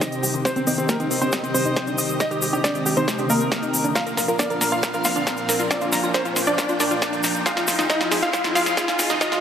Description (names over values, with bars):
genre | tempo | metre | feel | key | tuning
uplifting trance | 137 BPM | 4/4 | straight | C minor | A4 = 440 Hz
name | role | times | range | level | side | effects
wide unison pluck | melody | 0.0-9.4 s | Bb3 to F5 | -26 LUFS | equal | sidechain pumping, tape echo
bright concert grand piano | second line | 0.0-9.4 s | C4 to F5 | -27 LUFS | equal | sidechain pumping, low-pass filter, diffuse ambient delay
lush unison pad | sustained chords | 0.0-9.4 s | F2 to G5 | -27 LUFS | equal | chorus, phaser, sidechain pumping
analog pluck | arpeggios | 0.0-9.3 s | D4 to Bb5 | -28 LUFS | right 1 dB | chorus, sidechain pumping, diffuse ambient delay
big-room dance drum kit | drums | 0.0-9.4 s | hi-hat, snare drum | -26 LUFS | equal | overdrive, high-pass filter on snare, high-pass filter on hats
electronic kick drum | drums | 0.0-9.3 s | none | -24 LUFS | equal | overdrive, high-pass filter on kick
egg shaker | percussion | 0.0-9.4 s | none | -29 LUFS | left 2 dB | none
riser | sound effects | 0.5-9.4 s | none | -30 LUFS | left 1 dB | none
room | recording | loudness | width
wet lush hall reverb, RT60 1.9 s | dreamy mix soaked in reverb, high-pass filter | -19 LUFS | side -8 dB against mid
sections
0.0-9.4 A section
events
build-up 0.0-9.4; drum fill 0.0-9.4; filter sweep on synth pluck 0.0-9.4; filter sweep on synth arpeggio sound 0.0-9.4; riser 0.5-9.4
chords
0.0 Cmadd9; 4.0 Bb; 7.5 Fm7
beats
0.01 | 0.45 0.89 1.33 1.77 | 2.20 2.64 3.08 3.52 | 3.96 4.39 4.83 5.27 | 5.71 6.14 6.58 7.02 | 7.46 7.90 8.34 8.77 | 9.21